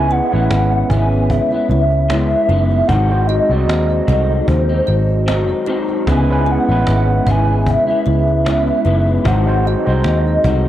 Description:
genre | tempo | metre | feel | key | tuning
indie pop, bedroom pop | 75 BPM | 4/4 | swing 55% on 16ths | C# minor | A4 = 440 Hz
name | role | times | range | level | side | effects
hollow clarinet-like synth lead | melody | 0.0-10.7 s | B#4 to G#5 | -19 LUFS | equal | ensemble chorus
electric guitar through a small old amp | accompaniment | 0.0-10.7 s | G#2 to E4 | -21 LUFS | left 4 dB | ensemble chorus, warbly pitch drift
overdriven tine electric piano | accompaniment | 0.0-10.7 s | G#3 to D#5 | -22 LUFS | right 4 dB | cassette tape
vintage muted picked electric bass | bass | 0.0-10.7 s | F#1 to D#2 | -16 LUFS | equal | tube saturation
kalimba | second line | 0.1-10.7 s | D#4 to F#5 | -26 LUFS | right 3 dB | wide subtle chorus, tape echo
cajon | drums | 0.1-10.6 s | none | -24 LUFS | equal | none
room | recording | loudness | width
studio ambience | dry, gritty hardware recording, cassette tape | -13 LUFS | side -12 dB against mid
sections
0.0-10.7 A section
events
none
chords
0.0 C#m7; 2.9 G#7; 6.1 C#m7; 9.3 G#7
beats
0.50 1.30 2.10 | 2.89 3.69 4.48 5.28 | 6.07 6.87 7.67 8.46 | 9.26 10.05

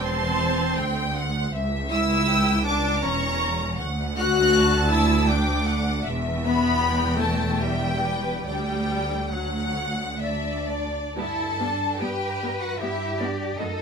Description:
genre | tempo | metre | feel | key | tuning
classical, slow romantic movement for string orchestra | 60-81 BPM | 3/4 | rubato | G major | A4 = 439 Hz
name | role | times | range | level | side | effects
warm studio violin section | melody | 0.0-13.8 s | D5 to F#6 | -28 LUFS | left 2 dB | none
rich studio violin section | second line | 0.0-13.8 s | D4 to Bb5 | -29 LUFS | equal | none
rich studio viola section | accompaniment | 0.0-13.7 s | F#3 to F#4 | -27 LUFS | left 2 dB | none
rich studio double bass section | bass | 0.0-13.8 s | E1 to G2 | -28 LUFS | right 2 dB | none
warm studio cello section | bass | 0.0-13.8 s | C#2 to B4 | -28 LUFS | equal | none
room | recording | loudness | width
light reverb | minimal, uncompressed stereo recording | -21 LUFS | side -6 dB against mid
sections
0.0-11.2 A section; 11.2-13.8 B section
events
none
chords
0.0 C/E; 1.5 Edim7(no3); 3.8 D; 6.1 Em; 8.5 D; 11.2 G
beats
0.03 0.78 | 1.54 2.29 3.04 | 3.79 4.55 5.31 | 6.07 6.82 7.61 | 8.47 9.34 10.22 | 11.16 12.01 12.81 | 13.59

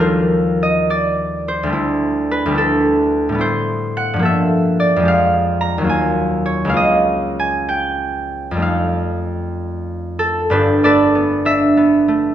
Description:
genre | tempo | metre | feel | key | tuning
classical, solo harp piece | 62-74 BPM (dotted quarters) | 6/8 | rubato | unclear | A4 = 440 Hz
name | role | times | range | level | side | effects
concert harp | solo | 0.0-12.3 s | G1 to Bb5 | -14 LUFS | equal | none
room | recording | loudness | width
moderate recital hall reverb, RT60 1.5 s | minimal, uncompressed stereo recording | -14 LUFS | side -10 dB against mid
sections
0.0-10.5 A section; 10.5-12.3 B section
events
none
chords
0.0 Ebadd9; 1.7 D9sus4; 3.4 Am9; 4.2 Gm9; 5.1 Fmadd9; 5.9 Ebmadd9; 6.8 C#69; 8.6 F9; 10.5 Gadd9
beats
| 0.00 0.91 | 1.75 2.58 | 3.42 4.25 | 5.06 5.89 | 6.75 7.69 | 8.62 9.57 | 10.51 11.46

